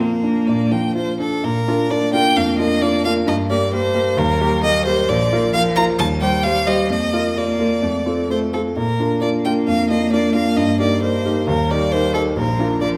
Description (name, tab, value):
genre	quick classical-period movement for piano trio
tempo	132 BPM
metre	4/4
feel	rubato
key	Bb major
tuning	A4 = 435 Hz
part	clear violin	melody	0.0-12.9 s	A4 to Bb5	-23 LUFS	equal	none
part	clear cello	second line	0.0-13.0 s	F3 to Bb3	-25 LUFS	equal	none
part	warm grand piano	accompaniment	0.0-13.0 s	Bb1 to C5	-21 LUFS	equal	none
room	wet recital hall reverb, RT60 1.6 s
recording	none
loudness	-18 LUFS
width	mono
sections	0.0-1.4 A section; 1.4-13.0 B section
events	none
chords	0.0 Bb; 3.3 Gmadd11; 4.2 Eb; 5.1 Bb; 6.0 Cm/Eb; 6.9 Bb/F; 7.8 F; 8.8 Bb; 10.6 Eb/G; 11.5 Eb; 12.4 Bb